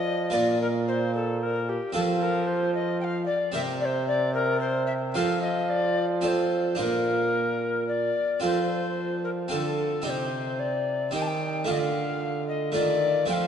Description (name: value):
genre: classical, renaissance-style consort dance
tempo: 112 BPM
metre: 3/4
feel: straight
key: unclear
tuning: A4 = 440 Hz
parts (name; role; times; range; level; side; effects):
- mellow alto recorder; melody; 0.0-13.5 s; G4 to A5; -28 LUFS; left 3 dB; none
- harpsichord; accompaniment; 0.0-13.5 s; Bb2 to Bb4; -29 LUFS; right 3 dB; none
- clear trombone; bass; 0.0-13.5 s; Bb2 to F3; -29 LUFS; right 1 dB; none
room: wet church reverb, RT60 3.2 s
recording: dark, warm production, nothing above 10.6 kHz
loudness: -24 LUFS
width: side -8 dB against mid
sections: 0.0-8.4 A section; 8.4-13.5 B section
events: none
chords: 0.3 Bb5; 1.9 F; 3.6 C5; 5.2 F; 6.8 Bb; 8.4 F; 10.1 Cm; 11.7 Dm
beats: | 0.34 0.87 1.41 | 1.95 2.48 3.02 | 3.56 4.09 4.63 | 5.17 5.71 6.25 | 6.80 7.35 7.89 | 8.44 8.98 9.52 | 10.06 10.60 11.14 | 11.67 12.21 12.75 | 13.29